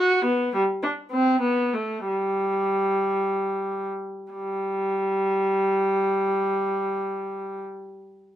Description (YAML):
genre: classical, baroque-style suite movement for unaccompanied viola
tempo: 47-72 BPM (dotted quarters)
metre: 6/8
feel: rubato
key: G major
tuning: A4 = 438 Hz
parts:
  - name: rich viola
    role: solo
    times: 0.0-7.6 s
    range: G3 to F#4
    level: -22 LUFS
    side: equal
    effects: none
room: light reverb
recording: minimal, uncompressed stereo recording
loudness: -22 LUFS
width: side -11 dB against mid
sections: 0.0-4.3 A section; 4.3-8.4 B section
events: slowing down 0.0-4.3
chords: none